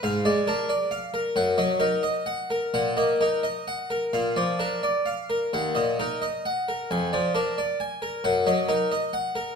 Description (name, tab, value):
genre	classical, baroque-style suite movement for harpsichord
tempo	88 BPM (dotted quarters)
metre	12/8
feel	rubato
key	Eb minor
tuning	A4 = 439 Hz
part	harpsichord	solo	0.0-9.6 s	Eb2 to Ab5	-23 LUFS	equal	none
room	moderate recital hall reverb, RT60 1.4 s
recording	minimal, uncompressed stereo recording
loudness	-23 LUFS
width	side -6 dB against mid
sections	0.0-9.6 A section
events	none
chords	0.0 Bb7/Ab; 1.4 Ebm/Gb; 2.7 Ebm/Bb; 4.1 Bb; 5.5 Ebm; 6.9 Bb7/F; 8.3 Ebm/Gb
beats	| 0.04 0.70 1.36 2.03 | 2.73 3.43 4.13 4.83 | 5.53 6.22 6.91 7.58 | 8.25 8.92